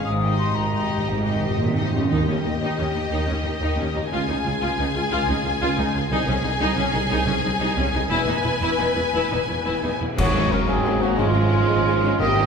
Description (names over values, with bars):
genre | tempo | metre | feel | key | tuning
cinematic, heroic adventure film score | 119 BPM (dotted quarters) | 6/8 | straight | unclear | A4 = 441 Hz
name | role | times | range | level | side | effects
rich studio violin section | melody | 0.0-12.5 s | Ab3 to Ab5 | -28 LUFS | left 4 dB | none
rich symphonic violin section | second line | 0.0-12.5 s | G3 to B4 | -28 LUFS | left 3 dB | none
rich symphonic viola section | accompaniment | 0.0-12.4 s | Db3 to F4 | -28 LUFS | left 1 dB | none
rich symphonic cello section | bass | 0.0-12.5 s | C2 to Db3 | -26 LUFS | right 1 dB | none
timpani | percussion | 0.0-2.6, 10.2-12.5 s | Ab2 to Eb3 | -27 LUFS | right 1 dB | none
concert flute | second line | 0.1-1.6 s | Eb5 to Eb6 | -29 LUFS | left 3 dB | none
rich symphonic double bass section | bass | 0.1-12.5 s | E1 to Eb2 | -27 LUFS | right 2 dB | none
cymbal swell, clash cymbals and concert bass drum | percussion | 8.1-10.8 s | none | -29 LUFS | left 1 dB | none
dark trombone section | sustained chords | 10.2-12.5 s | F3 to Db4 | -27 LUFS | right 1 dB | none
mellow trumpet | stabs | 10.2-12.5 s | F4 to Eb5 | -22 LUFS | right 3 dB | none
room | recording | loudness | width
wet scoring stage reverb, RT60 1.8 s | heard from further back in the room | -19 LUFS | side -6 dB against mid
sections
0.0-2.1 A section; 2.1-10.2 B section; 10.2-12.5 A section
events
timpani fill 0.1-2.1; build-up 2.1-10.2; band accent 10.2-10.5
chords
0.1 Eb/Ab; 2.1 Eb; 4.1 Db; 6.1 Ab/C; 8.1 E; 10.2 Gb/Ab; 11.2 Db/Ab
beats
| 0.06 0.57 | 1.09 1.60 | 2.12 2.63 | 3.13 3.63 | 4.12 4.62 | 5.12 5.61 | 6.11 6.61 | 7.11 7.61 | 8.11 8.62 | 9.14 9.66 | 10.18 10.69 | 11.19 11.69 | 12.20